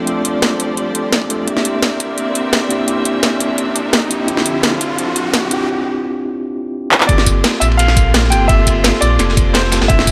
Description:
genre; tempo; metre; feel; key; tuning
liquid drum and bass; 171 BPM; 4/4; straight; G dorian; A4 = 439 Hz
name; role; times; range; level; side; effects
mellow tine electric piano; accompaniment; 0.0-10.1 s; A3 to A4; -22 LUFS; equal; low-pass filter
clear symphonic string section; sustained chords; 0.0-10.1 s; D3 to G5; -26 LUFS; equal; sidechain pumping
riser; sound effects; 0.4-5.7 s; none; -27 LUFS; equal; none
drum and bass drum kit; drums; 0.1-10.1 s; handclaps, hi-hat, snare drum, tambourine; -18 LUFS; equal; none
electronic kick drum; drums; 1.2-4.9, 7.1-10.1 s; none; -17 LUFS; equal; high-pass filter on kick, high-pass filter on room
bright baby grand piano; melody; 7.1-10.1 s; C5 to G5; -21 LUFS; equal; low-pass filter, delay
sub bass with octave; bass; 7.1-10.1 s; F1 to Bb1; -18 LUFS; equal; none
crunchy breakbeat drum kit; drums; 7.1-10.1 s; ride cymbal, snare drum; -24 LUFS; equal; high-pass filter on cymbals, high-pass filter on snare, high-pass filter on room
room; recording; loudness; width
light reverb; none; -15 LUFS; mono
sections
0.0-7.1 A section; 7.1-10.1 B section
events
build-up 0.0-7.1; riser 0.4-5.7; drum fill 6.9; drop 7.1-10.1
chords
0.0 F6; 1.5 C9; 4.3 Dm11; 7.1 Gm11

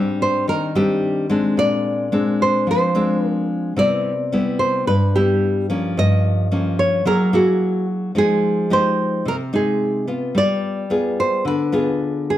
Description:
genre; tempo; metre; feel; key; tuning
bossa nova; 109 BPM; 4/4; straight; C minor; A4 = 440 Hz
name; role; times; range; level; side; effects
nylon-string guitar; melody; 0.0-12.4 s; F#4 to Eb5; -20 LUFS; equal; none
nylon-string guitar; accompaniment; 0.0-12.4 s; G2 to G#4; -19 LUFS; left 1 dB; none
room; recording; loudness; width
moderate large studio reverb, RT60 0.9 s; none; -16 LUFS; side -12 dB against mid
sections
0.0-12.4 A section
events
none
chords
0.0 Abmaj7#11; 1.6 Bb9; 3.8 Cmaj7; 6.0 Gm7b5; 7.1 F#9; 8.2 Fm9; 10.3 G7b9

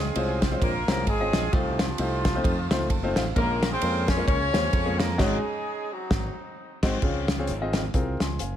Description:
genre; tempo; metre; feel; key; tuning
uptempo gospel; 131 BPM; 4/4; swing 57% on 8ths; Db major; A4 = 444 Hz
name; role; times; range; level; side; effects
mellow horn section; melody; 0.0-6.8 s; F3 to Db5; -29 LUFS; equal; none
warm upright piano; accompaniment; 0.0-8.6 s; Ab2 to C6; -29 LUFS; left 2 dB; none
modern bright fingered electric bass; bass; 0.0-8.6 s; Gb1 to F2; -29 LUFS; equal; none
natural country drum kit; drums; 0.2-8.5 s; crash cymbal, hi-hat, kick drum, ride cymbal, snare drum; -26 LUFS; equal; none
room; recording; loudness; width
light reverb, small room ambience; none; -23 LUFS; side -10 dB against mid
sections
0.0-7.0 A section; 7.0-8.6 B section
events
upright piano fill 2.4-3.4; band accent 5.2-7.0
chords
0.0 Dbmaj7; 1.5 F7/C; 3.4 Bbm7; 5.2 Ab7sus4; 6.1 Ab7; 7.0 Dbmaj7

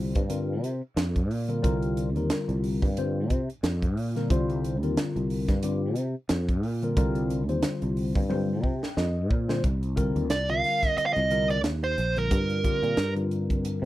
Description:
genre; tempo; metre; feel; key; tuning
electric jazz fusion; 90 BPM; 4/4; swing 56% on 16ths; C minor; A4 = 439 Hz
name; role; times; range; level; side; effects
mellow tine electric piano; accompaniment; 0.0-13.9 s; D3 to G5; -30 LUFS; left 2 dB; phaser
sustaining fretless electric bass; bass; 0.0-13.9 s; Bb1 to C3; -28 LUFS; equal; ensemble chorus
crisp fusion drum kit; drums; 0.1-13.8 s; hi-hat, kick drum, snare drum, toms; -28 LUFS; equal; none
dark smooth lead guitar; melody; 10.3-13.1 s; Bb4 to F5; -25 LUFS; right 3 dB; overdrive, slapback echo
room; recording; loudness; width
light reverb; none; -24 LUFS; side -16 dB against mid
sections
0.0-9.6 A section; 9.6-13.9 B section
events
drum fill 8.3-9.6; tine electric piano fill 8.3-9.6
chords
0.0 C7sus2; 9.6 C9sus4

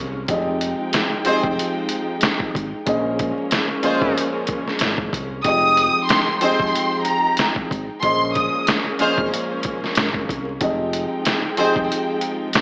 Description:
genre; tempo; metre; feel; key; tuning
hip hop, boom-bap hip-hop; 93 BPM; 4/4; swing 58% on 16ths; F minor; A4 = 443 Hz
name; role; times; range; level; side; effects
dark grand piano; accompaniment; 0.0-12.6 s; Bb2 to Eb5; -23 LUFS; equal; cassette tape, high-pass filter, low-pass filter
warm studio string section; sustained chords; 0.0-12.6 s; F3 to G5; -27 LUFS; equal; high-pass filter, low-pass filter
deep dub fingered electric bass; bass; 0.0-11.9 s; F1 to C2; -28 LUFS; equal; none
trip hop sampler-style drum kit; drums; 0.3-12.6 s; hi-hat, kick drum, snare drum; -22 LUFS; equal; none
brilliant trumpet section; stabs; 1.3-11.8 s; C4 to C5; -24 LUFS; equal; high-pass filter, low-pass filter, tape echo
warm symphonic violin section; melody; 5.4-9.2 s; Bb5 to F6; -19 LUFS; equal; high-pass filter, low-pass filter, tape echo
room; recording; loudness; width
moderate echo chamber reverb, RT60 1.8 s, small room ambience; vinyl crackle, AM radio sound; -18 LUFS; side -33 dB against mid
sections
0.0-12.6 A section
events
none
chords
0.3 Fm9; 2.9 Bbm11; 5.4 Fm9; 8.0 Bbm11; 10.6 Fm9

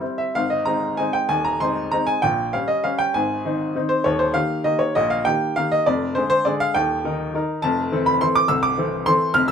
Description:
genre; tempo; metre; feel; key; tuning
classical, piano waltz; 157-217 BPM; 3/4; rubato; Ab major; A4 = 440 Hz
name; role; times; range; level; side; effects
clear upright piano; solo; 0.0-9.5 s; C1 to F6; -18 LUFS; equal; none
room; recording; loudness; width
light reverb; minimal, uncompressed stereo recording; -18 LUFS; side -7 dB against mid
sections
0.4-9.5 A section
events
none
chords
0.4 Ab; 2.2 Gdim/Bb; 3.1 Ab; 4.0 Eb; 5.9 Ddim/F; 6.8 Eb; 7.6 Fmaj7

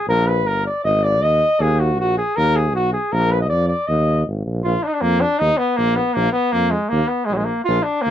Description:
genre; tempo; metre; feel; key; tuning
balkan folk; 158 BPM; 2/4; swing 55% on 16ths; Eb harmonic minor; A4 = 439 Hz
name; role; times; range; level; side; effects
warm flugelhorn; melody; 0.0-8.1 s; Gb3 to Eb5; -18 LUFS; left 1 dB; none
warm tuba; bass; 0.1-8.1 s; G1 to F2; -20 LUFS; equal; none
room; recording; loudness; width
light reverb; dry, close 1970s-style studio recording; -16 LUFS; side -10 dB against mid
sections
0.0-4.6 A section; 4.6-8.1 B section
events
none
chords
0.1 Gm; 0.8 Ab5; 1.6 Eb5; 3.1 Bb5; 3.9 Eb5; 4.6 Bb5; 5.4 Eb5; 6.2 Bb5; 6.9 Eb5

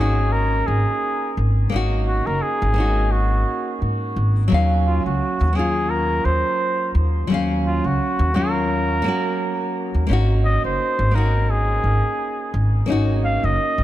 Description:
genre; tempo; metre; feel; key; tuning
sunset chillout; 86 BPM; 4/4; swing 56% on 16ths; unclear; A4 = 439 Hz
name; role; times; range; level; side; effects
warm flugelhorn; melody; 0.0-13.8 s; F4 to F5; -23 LUFS; equal; tape echo
nylon-string guitar; accompaniment; 0.0-13.8 s; Gb3 to F5; -24 LUFS; moving between left 4 dB and right 6 dB; auto-pan
upright bass; bass; 0.0-13.8 s; Gb1 to Ab2; -19 LUFS; equal; none
room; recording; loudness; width
light reverb, small room ambience; none; -18 LUFS; side -14 dB against mid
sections
0.0-13.8 A section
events
none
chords
0.0 Ab7sus4; 4.5 Ebm7; 10.1 Ab7sus4

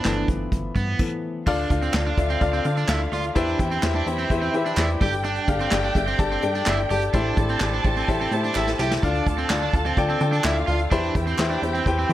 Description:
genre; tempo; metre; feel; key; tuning
piano-driven pop; 127 BPM; 4/4; straight; unclear; A4 = 440 Hz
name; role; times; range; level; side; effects
dark upright piano; accompaniment; 0.0-12.1 s; G2 to C6; -25 LUFS; left 4 dB; none
crunchy overdriven guitar; riff; 0.0-12.1 s; B3 to G4; -28 LUFS; right 5 dB; spring reverb
vintage brush drum kit; drums; 0.0-12.1 s; crash cymbal, handclaps, hi-hat, kick drum, snare drum; -26 LUFS; equal; none
plucky analog bass; bass; 0.1-12.1 s; G1 to E3; -26 LUFS; equal; none
warm studio violin section; second line; 1.5-12.1 s; E4 to A5; -31 LUFS; right 1 dB; none
group handclap; percussion; 1.9-11.5 s; none; -34 LUFS; right 6 dB; none
room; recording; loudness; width
light reverb, small room reverb; none; -20 LUFS; side -13 dB against mid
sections
0.0-1.5 A section; 1.5-12.1 B section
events
upright piano solo 0.0-1.5; stop 1.0-1.5; upright piano fill 8.1-9.0; drum fill 8.6-9.0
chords
0.0 G6; 1.5 Dm; 3.4 Cmaj7/E; 5.0 Gsus2; 7.1 Am7; 9.0 Dm; 10.9 Cmaj7/E

